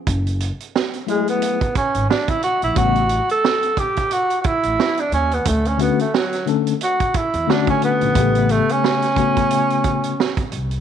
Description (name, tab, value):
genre	hip hop, jazz-hop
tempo	89 BPM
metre	4/4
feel	swing 58% on 16ths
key	F# minor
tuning	A4 = 440 Hz
part	upright bass	bass	0.1-10.8 s	F#1 to E2	-22 LUFS	equal	none
part	vintage drum kit	drums	0.1-10.8 s	hi-hat, kick drum, snare drum	-23 LUFS	right 5 dB	none
part	breathy tenor saxophone	melody	1.1-10.4 s	F#3 to A4	-19 LUFS	right 2 dB	none
part	mellow tine electric piano	accompaniment	1.1-10.1 s	C#3 to A4	-21 LUFS	left 11 dB	fast tremolo
room	light reverb, small room ambience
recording	1960s-style stereo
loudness	-16 LUFS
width	side -8 dB against mid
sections	0.1-10.8 A section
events	tenor saxophone solo 0.1-10.8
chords	0.1 F#m9; 2.8 A13; 5.5 Dmaj7; 8.2 A9